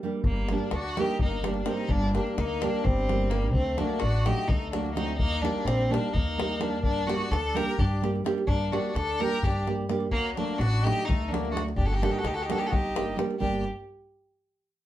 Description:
balkan folk, Balkan wedding band; 255 BPM (eighths); 7/8; straight; G harmonic minor; A4 = 440 Hz
nylon-string guitar; accompaniment; 0.0-13.6 s; F#3 to G4; -30 LUFS; right 3 dB
upright bass; bass; 0.2-13.6 s; G1 to G2; -30 LUFS; equal
davul; percussion; 0.2-13.6 s; -31 LUFS; left 1 dB
rich violin; melody; 0.3-13.6 s; Bb3 to Bb4; -31 LUFS; left 1 dB
accordion; second line; 0.3-13.6 s; F#3 to G4; -36 LUFS; left 3 dB
wet studio reverb, RT60 0.5 s; heard from further back in the room; -24 LUFS; side -13 dB against mid
0.2-13.4 A section; 13.4-14.9 B section
break 0.0
0.2 Gm; 3.5 D; 5.2 Eb; 6.8 Gm; 10.1 D; 11.8 Gm

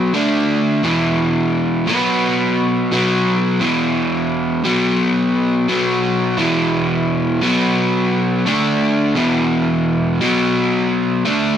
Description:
rock; 86 BPM; 4/4; straight; A4 = 438 Hz
crunchy overdriven guitar; solo; 0.0-11.6 s; E2 to D4; -14 LUFS; equal
moderate studio reverb, RT60 0.7 s; -14 LUFS; side -9 dB against mid
0.0-6.4 A section; 6.4-11.6 B section
0.1 D5; 0.8 E5; 1.9 B5; 3.6 E5; 4.7 B5; 6.4 E5; 7.4 B5; 8.5 D5; 9.2 E5; 10.2 B5

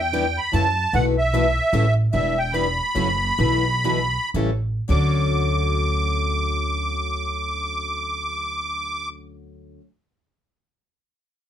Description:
acoustic string swing (jazz manouche); 105-150 BPM; 3/4; swing 63% on 8ths; D major; A4 = 439 Hz
musette accordion; melody; 0.0-9.1 s; E5 to D6; -23 LUFS; right 1 dB
upright bass; bass; 0.0-9.8 s; E1 to F#2; -23 LUFS; equal
picked plugged-in steel-string acoustic guitar; accompaniment; 0.1-9.8 s; B2 to B4; -29 LUFS; equal
picked steel-string acoustic guitar; accompaniment; 0.1-9.8 s; B2 to B4; -30 LUFS; left 6 dB
moderate studio ambience, RT60 0.4 s; band playing live in one room; -20 LUFS; side -10 dB against mid
0.0-4.9 A section; 4.9-8.3 B section
slowing down 2.1-4.9
0.0 Em7; 0.5 F#m7; 0.9 B7sus4; 1.7 A7; 2.1 Em7; 3.0 F#m7; 3.4 B7sus4; 4.3 A7; 4.9 Dmaj7

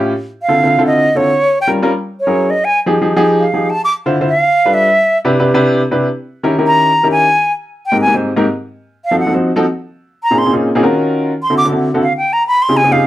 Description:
jazz; 202 BPM; 4/4; straight; Ab major from 7.3 s; A4 = 440 Hz
warm upright piano; accompaniment; 0.0-13.1 s; Ab2 to C5; -13 LUFS; equal
silver concert flute; melody; 0.4-13.1 s; C#5 to D6; -12 LUFS; equal; plate reverb
moderate studio ambience, RT60 0.5 s; -11 LUFS; side -14 dB against mid
0.0-7.3 A section; 7.3-13.1 A section
flute solo 0.0-13.1
0.1 Dm9; 1.3 Gm7b5; 1.9 F#9; 2.5 Fm7; 3.7 Dm7; 4.3 G9; 4.9 Cmaj9; 6.1 Eb7b9; 7.3 Abmaj9; 8.4 F7b9; 9.6 Bbm11; 10.8 Ebm9; 11.4 D9; 12.0 Dbmaj9#11

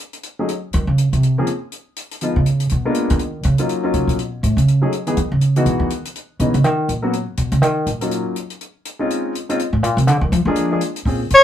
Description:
jazz, small-group swing and bop; 244 BPM; 4/4; swing 59% on 8ths; Bb minor, Eb minor from 3.2 s; A4 = 437 Hz
compact cocktail drum kit; drums; 0.1-11.4 s; hi-hat, kick drum; -31 LUFS; left 3 dB
warm baby grand piano; accompaniment; 0.4-11.2 s; Fb3 to Ab4; -20 LUFS; left 2 dB
upright bass; bass; 0.7-11.4 s; A2 to F3; -16 LUFS; right 1 dB
clear soprano saxophone; melody; 11.3-11.4 s; Db5; -3 LUFS; left 1 dB
moderate studio reverb, RT60 0.5 s; band playing live in one room; -16 LUFS; side -10 dB against mid
0.0-3.2 A section; 3.2-11.1 A section
upright bass solo 0.0-11.1
0.2 Cm; 1.2 Bbm9; 2.2 Fm7b5; 2.7 Bb7b9; 3.2 Ebm9; 4.2 Aadd9; 4.7 B13; 5.2 Emaj7; 6.2 Dbm9; 6.6 Gb6; 7.1 Bmaj7; 8.1 Ebm7; 8.6 Ab; 9.1 Dbmaj9; 10.1 Bb7

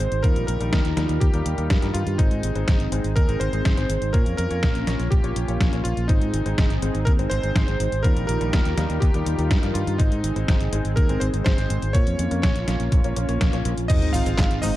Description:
italo disco; 123 BPM; 4/4; straight; Ab major; A4 = 440 Hz
bright electric grand piano; melody; 0.0-14.8 s; Eb4 to F5; -30 LUFS; right 1 dB; tape echo
warm analog pad; sustained chords; 0.0-14.8 s; Eb3 to Bb4; -30 LUFS; equal; chorus
clear grand piano; stabs; 0.0-14.8 s; G3 to Db5; -32 LUFS; left 4 dB
fingered electric bass; bass; 0.0-14.7 s; Ab1 to Bb2; -24 LUFS; equal
detuned 8-bit digital drum machine; drums; 0.0-14.7 s; cabasa, crash cymbal, handclaps, hi-hat, snare drum; -29 LUFS; equal; overdrive
electronic kick drum; drums; 0.2-14.5 s; -20 LUFS; equal; overdrive
analog pluck; arpeggios; 13.9-14.7 s; Ab3 to Eb4; -32 LUFS; right 5 dB; chorus, tape echo
sub drop; sound effects; 14.0-14.8 s; -26 LUFS; equal
light reverb, digital ambience; dark, warm production; -19 LUFS; side -15 dB against mid
0.0-13.9 A section
impact 13.9-14.8
0.2 Ebadd9; 2.2 Ab; 4.1 Bbm; 6.1 Ab; 8.0 Ebadd9; 10.0 Ab; 11.9 Bbm; 13.9 Ab

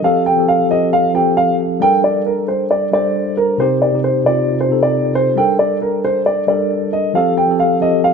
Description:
hip hop; 135 BPM; 4/4; half-time; G minor; A4 = 441 Hz
dark concert grand piano; melody; 0.0-8.1 s; Bb4 to G5; -15 LUFS; right 1 dB
mellow tine electric piano; accompaniment; 0.0-8.1 s; C3 to C5; -17 LUFS; left 1 dB; medium stereo tremolo
light reverb; -13 LUFS; side -6 dB against mid
0.0-8.1 A section
0.0 Fadd9; 1.8 Gmadd9; 3.6 Cm; 5.4 Gmadd9; 7.2 Fadd9

